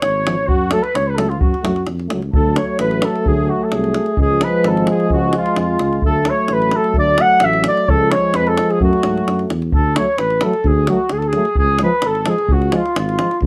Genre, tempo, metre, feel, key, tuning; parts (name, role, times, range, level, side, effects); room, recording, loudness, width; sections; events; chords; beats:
balkan folk, Balkan brass band; 130 BPM; 2/4; swing 54% on 16ths; A4 = 440 Hz
mellow flugelhorn; melody; 0.0-13.4 s; E#4 to F#5; -21 LUFS; equal; plate reverb
warm clarinet; second line; 0.0-13.4 s; E#4 to F#5; -25 LUFS; equal
dark tuba; bass; 0.0-13.5 s; G#1 to G#2; -23 LUFS; equal
davul; percussion; 0.0-13.5 s; -22 LUFS; equal
warm euphonium; accompaniment; 0.2-13.3 s; G#3 to A3; -26 LUFS; equal
mellow euphonium; accompaniment; 0.3-13.3 s; E#3 to F#3; -25 LUFS; equal
light reverb; close, detailed microphones; -16 LUFS; mono
0.0-2.3 A section; 2.3-9.7 B section; 9.7-13.5 B section
0.5 F#m; 2.3 D; 4.2 C#; 6.0 D; 7.9 C#; 8.8 F#m; 9.7 D; 11.6 C#
0.01 | 0.48 0.94 | 1.40 1.86 | 2.33 2.79 | 3.25 3.71 | 4.17 4.64 | 5.10 5.56 | 6.03 6.49 | 6.95 7.41 | 7.88 8.34 | 8.80 9.26 | 9.72 10.19 | 10.65 11.11 | 11.57 12.03 | 12.49 12.95 | 13.41